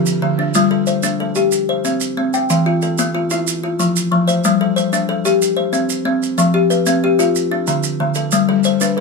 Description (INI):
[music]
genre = southern african traditional, mbira-style interlocking cycle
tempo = 124 BPM (dotted quarters)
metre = 12/8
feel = straight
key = G mixolydian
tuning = A4 = 441 Hz
[part]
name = buzzing kalimba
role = arpeggios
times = 0.0-0.9, 8.5-9.0 s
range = D3 to B4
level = -23 LUFS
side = right 3 dB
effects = none
[part]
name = kalimba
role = arpeggios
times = 0.0-9.0 s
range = D3 to G5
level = -15 LUFS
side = left 3 dB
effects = none
[part]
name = maracas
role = percussion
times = 0.1-9.0 s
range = none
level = -24 LUFS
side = right 7 dB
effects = none
[sound]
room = moderate studio reverb, RT60 0.6 s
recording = none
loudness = -14 LUFS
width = side -3 dB against mid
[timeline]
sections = 0.5-9.0 A section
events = none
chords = 0.0 N.C.; 0.5 G5; 1.5 C5; 2.5 Em; 3.5 F5; 4.4 G5; 5.4 N.C.; 6.4 F5; 7.4 D5; 8.3 G